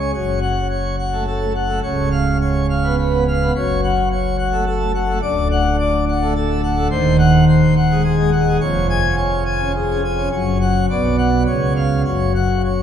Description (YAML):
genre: classical, organ toccata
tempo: 106 BPM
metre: 3/4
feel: straight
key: F# minor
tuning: A4 = 439 Hz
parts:
  - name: pipe organ, plenum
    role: solo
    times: 0.0-12.8 s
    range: C#1 to G#5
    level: -15 LUFS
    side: equal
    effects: none
room: wet church reverb, RT60 3.4 s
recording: minimal, uncompressed stereo recording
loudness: -15 LUFS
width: side -9 dB against mid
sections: 0.1-12.8 A section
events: none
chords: 0.1 F#m; 1.8 C#7; 3.5 F#m; 5.2 D; 6.9 G#7/D#; 8.6 C#/E#; 10.3 F#5; 10.9 Bm; 11.5 C#; 12.1 F#5